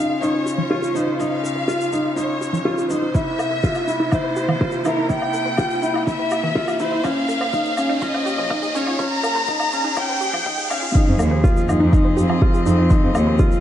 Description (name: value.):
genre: piano and strings electronica.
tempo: 123 BPM.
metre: 4/4.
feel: straight.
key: F minor.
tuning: A4 = 435 Hz.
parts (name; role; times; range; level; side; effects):
clear studio violin section; melody; 0.0-11.0 s; Bb4 to Bb5; -24 LUFS; left 1 dB; none.
warm string quartet; sustained chords; 0.0-13.6 s; Bb2 to Eb5; -28 LUFS; left 1 dB; sidechain pumping.
felt-muted upright piano; riff; 0.0-13.6 s; Db4 to F4; -23 LUFS; equal; none.
riser; sound effects; 0.9-11.0 s; none; -31 LUFS; right 2 dB; none.
wide unison pluck; arpeggios; 0.1-13.3 s; E3 to F5; -28 LUFS; right 2 dB; cassette tape, sidechain pumping, tape echo.
shaker and woodblock; drums; 0.2-13.6 s; none; -31 LUFS; left 2 dB; high-pass filter on perc, high-pass filter on room.
electronic kick drum; drums; 3.1-13.5 s; none; -18 LUFS; equal; overdrive.
clear studio cello section; bass; 11.1-13.3 s; Eb2 to F2; -19 LUFS; equal; tube saturation, sidechain pumping.
room: wet recital hall reverb, RT60 1.6 s, small room reverb.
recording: dark, warm production, high-pass filter, nothing above 10.7 kHz.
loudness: -17 LUFS.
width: side -11 dB against mid.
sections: 0.0-11.0 A section; 11.0-13.6 B section.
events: build-up 0.0-11.0; filter sweep on synth arpeggio sound 0.0-11.0; filter sweep 0.0-11.0; riser 0.9-11.0; drop 11.0-13.6.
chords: 0.0 Db; 3.1 C7; 7.1 Bbm7; 11.0 Fm7.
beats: 0.22 0.71 | 1.20 1.69 2.17 2.66 | 3.15 3.64 4.12 4.61 | 5.10 5.59 6.08 6.56 | 7.05 7.54 8.03 8.52 | 9.00 9.49 9.98 10.47 | 10.95 11.44 11.93 12.42 | 12.90 13.39.